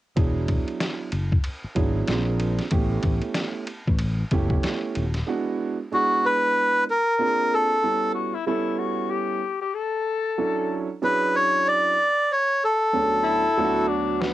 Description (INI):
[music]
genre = hip hop, jazz-hop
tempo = 94 BPM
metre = 4/4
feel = swing 60% on 16ths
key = unclear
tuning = A4 = 440 Hz
[part]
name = dark baby grand piano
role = accompaniment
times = 0.2-14.3 s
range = D2 to C#5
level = -27 LUFS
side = right 5 dB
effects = cassette tape
[part]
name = fretless electric bass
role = bass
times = 0.2-5.2 s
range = D#1 to A#1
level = -25 LUFS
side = left 1 dB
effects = ensemble chorus
[part]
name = trip hop sampler-style drum kit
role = drums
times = 0.2-5.3, 14.2-14.3 s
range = hi-hat, kick drum, ride cymbal, snare drum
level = -26 LUFS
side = left 1 dB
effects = none
[part]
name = melodica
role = melody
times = 5.9-13.9 s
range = F#4 to D5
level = -19 LUFS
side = equal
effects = cassette tape
[part]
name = breathy tenor saxophone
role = second line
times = 8.1-14.3 s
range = B3 to A4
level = -26 LUFS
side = left 7 dB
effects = cassette tape
[sound]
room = moderate booth ambience, RT60 0.3 s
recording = home recording on cassette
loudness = -21 LUFS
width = side -14 dB against mid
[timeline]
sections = 0.2-5.3 A section; 5.3-14.3 B section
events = none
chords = 0.2 E9; 2.1 A#9; 2.7 A7; 5.3 E9; 7.2 A#9; 7.8 A7; 10.4 Dmaj9; 12.9 Bm9/D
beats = | 0.17 0.81 1.45 2.08 | 2.72 3.36 4.00 4.64 | 5.28 5.91 6.55 7.19 | 7.83 8.47 9.11 9.74 | 10.38 11.02 11.66 12.30 | 12.94 13.57 14.21